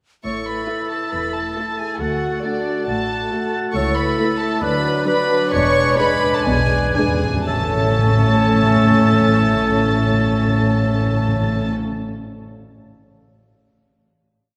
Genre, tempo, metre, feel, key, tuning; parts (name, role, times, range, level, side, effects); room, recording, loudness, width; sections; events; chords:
quick classical-period movement for symphony orchestra; 116-140 BPM; 4/4; rubato; A major; A4 = 441 Hz
warm chamber violin section; melody; 0.2-11.7 s; D5 to C#6; -28 LUFS; equal
hollow concert flute; second line; 0.2-11.7 s; F#6 to A6; -28 LUFS; equal
mellow oboe; second line; 0.2-11.7 s; D5 to F#5; -29 LUFS; equal
warm chamber violin section; second line; 0.2-11.7 s; D4 to C#5; -30 LUFS; equal
warm clarinet; second line; 0.2-11.7 s; A4 to C#5; -29 LUFS; equal
warm French horn section; sustained chords; 0.2-11.7 s; F#3 to F#4; -27 LUFS; equal
dark chamber double bass section; bass; 0.2-11.7 s; E1 to D2; -26 LUFS; equal
warm chamber cello section; bass; 0.2-11.7 s; C#2 to B2; -26 LUFS; equal
timpani; percussion; 0.2-0.9, 5.5-11.8 s; E2 to A2; -25 LUFS; equal
warm chamber viola section; accompaniment; 0.7-11.7 s; F#3 to F#4; -27 LUFS; equal
wet concert hall reverb, RT60 2.5 s; -18 LUFS; mono
0.2-7.5 A section; 7.5-11.4 final chord
slowing down 2.9-7.5; timpani fill 5.5-7.5
0.2 A5; 2.0 D; 3.8 A/C#; 4.6 Bm/D; 5.5 E7; 7.5 A